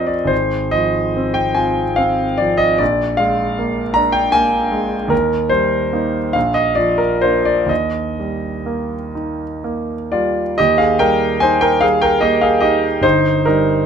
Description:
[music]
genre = classical, romantic nocturne for solo piano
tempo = 40-54 BPM (dotted quarters)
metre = 6/8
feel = rubato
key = Eb major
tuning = A4 = 442 Hz
[part]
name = clear concert grand piano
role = solo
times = 0.0-13.9 s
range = G1 to Bb5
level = -14 LUFS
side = equal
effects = none
[sound]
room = little or no reverb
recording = close, detailed microphones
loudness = -14 LUFS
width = side -7 dB against mid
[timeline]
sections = 0.0-10.6 A section; 10.6-13.9 B section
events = none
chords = 0.3 Fm/Ab; 2.8 Bb7; 5.1 Eb; 6.4 Bb; 7.7 Eb; 13.0 Eb/G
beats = | 0.31 1.57 | 2.81 3.95 | 5.12 6.35 | 7.70 9.14 | 10.58 11.83 | 13.04

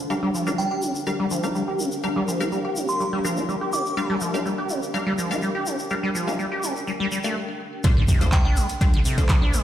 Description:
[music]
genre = acid house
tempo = 124 BPM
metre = 4/4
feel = straight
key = unclear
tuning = A4 = 436 Hz
[part]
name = granular cloud pad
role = texture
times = 0.0-9.6 s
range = D4 to G5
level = -30 LUFS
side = equal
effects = built-in reverb, sidechain pumping
[part]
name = acid bass, saw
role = riff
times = 0.1-9.6 s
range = C3 to G4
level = -26 LUFS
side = equal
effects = tube saturation, lush chorus, sidechain pumping, digital delay
[part]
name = filtered dub chord stab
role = stabs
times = 0.1-9.3 s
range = A3 to F5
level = -32 LUFS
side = left 3 dB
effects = phaser, digital delay
[part]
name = egg shaker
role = percussion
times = 0.1-9.6 s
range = none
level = -35 LUFS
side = left 1 dB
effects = none
[part]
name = glassy synth bell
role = melody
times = 0.6-4.1, 8.3-8.5 s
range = G5 to D6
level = -30 LUFS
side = right 1 dB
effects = chorus, ping-pong delay
[part]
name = booming analog drum machine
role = drums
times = 7.8-9.6 s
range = handclaps, hi-hat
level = -30 LUFS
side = equal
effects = low-pass filter on hats, low-pass filter on snare, low-pass filter on room
[part]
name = electronic kick drum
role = drums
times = 7.8-9.4 s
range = none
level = -18 LUFS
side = equal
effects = none
[part]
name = sub drop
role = sound effects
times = 7.8-9.6 s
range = none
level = -26 LUFS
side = equal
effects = none
[sound]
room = moderate lush hall reverb, RT60 2.3 s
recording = played on a big sound system in a bare room, stone room reverb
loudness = -21 LUFS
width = side -11 dB against mid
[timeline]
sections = 0.0-7.8 A section; 7.8-9.6 B section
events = filter sweep on acid bass 0.0-7.8; stop 7.4-7.8; drop 7.8-9.6; impact 7.8-9.6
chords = 0.1 Gm7; 7.8 Dm7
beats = | 0.10 0.58 1.07 1.55 | 2.04 2.52 3.00 3.49 | 3.97 4.46 4.94 5.42 | 5.91 6.39 6.88 7.36 | 7.84 8.33 8.81 9.29

